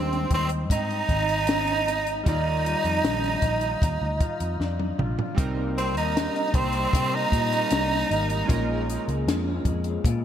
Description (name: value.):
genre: indie pop, bedroom pop.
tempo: 77 BPM.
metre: 4/4.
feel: straight.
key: unclear.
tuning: A4 = 439 Hz.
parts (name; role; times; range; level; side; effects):
raspy tenor saxophone; melody; 0.0-9.1 s; C4 to Eb4; -26 LUFS; right 2 dB; ensemble chorus, ping-pong delay.
chorused retro synth keys; accompaniment; 0.0-10.2 s; G3 to D5; -36 LUFS; right 5 dB; cassette tape.
electric guitar through a small old amp; accompaniment; 0.0-10.2 s; Ab2 to F4; -32 LUFS; left 4 dB; ensemble chorus, vibrato effect.
vintage muted fingered electric bass; bass; 0.0-10.2 s; Ab1 to C3; -28 LUFS; equal; none.
compact cocktail drum kit; drums; 0.1-10.2 s; hi-hat, kick drum, snare drum, toms; -27 LUFS; left 1 dB; gated reverb.
room: moderate plate reverb, RT60 2.2 s.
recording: bright 1980s-style digital production.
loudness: -22 LUFS.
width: side -9 dB against mid.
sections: 0.0-5.4 A section; 5.4-10.2 B section.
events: drum fill 4.6-5.4; tenor saxophone solo 5.4-10.2.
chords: 0.0 Abmaj7; 2.3 Ebmaj9; 5.4 Cm7; 8.5 Bbm7.